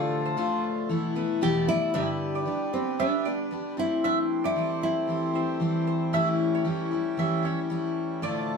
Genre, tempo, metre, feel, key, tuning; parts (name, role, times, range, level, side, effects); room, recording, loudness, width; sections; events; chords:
acoustic pop; 114 BPM; 4/4; swing 55% on 16ths; A minor; A4 = 440 Hz
nylon-string guitar; melody; 0.0-5.6 s; C4 to A4; -28 LUFS; equal
picked steel-string acoustic guitar; accompaniment; 0.0-8.6 s; E2 to G4; -27 LUFS; left 2 dB
pedal harmonium; sustained chords; 0.0-8.6 s; A2 to D5; -34 LUFS; right 1 dB
mandolin; arpeggios; 0.3-8.4 s; B4 to E5; -32 LUFS; right 4 dB
wet studio reverb, RT60 0.5 s; band playing live in one room; -24 LUFS; side -5 dB against mid
0.0-1.9 A section; 1.9-8.6 B section
0.0 Dm/A; 0.9 Esus4; 1.9 G; 3.8 Am7; 6.1 A7